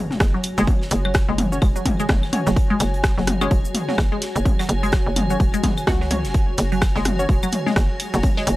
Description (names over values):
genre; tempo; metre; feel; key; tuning
minimal techno; 127 BPM; 4/4; swing 59% on 16ths; unclear; A4 = 441 Hz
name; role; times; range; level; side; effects
impact; sound effects; 0.0-0.7 s; none; -44 LUFS; equal; none
granular cloud pad; texture; 0.0-8.6 s; F#4 to G#5; -29 LUFS; equal; built-in reverb, sidechain pumping
huge arena drum kit; drums; 0.1-8.6 s; hi-hat, snare drum; -38 LUFS; right 1 dB; sidechain pumping on hats, high-pass filter on hats, high-pass filter on snare, high-pass filter on room
electronic toms and claves; percussion; 0.1-8.3 s; none; -26 LUFS; left 1 dB; analog delay
hollow knocking FM bass; bass; 0.2-8.6 s; E1 to C#2; -23 LUFS; equal; sidechain pumping
electronic kick drum; drums; 0.2-8.3 s; none; -20 LUFS; equal; none
punchy analog drum machine; drums; 0.2-8.6 s; hi-hat, rim click, shaker; -24 LUFS; equal; none
resonant blip pluck; riff; 0.3-8.4 s; F#3 to F#4; -26 LUFS; equal; phaser, analog chorus, sidechain pumping, analog delay
wavetable chord stab; stabs; 1.5-7.2 s; C#4 to C#5; -29 LUFS; left 1 dB; analog delay
room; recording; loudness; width
light reverb; dry, gritty hardware recording; -17 LUFS; side -18 dB against mid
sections
0.0-8.6 A section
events
impact 0.0-0.7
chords
0.0 F#5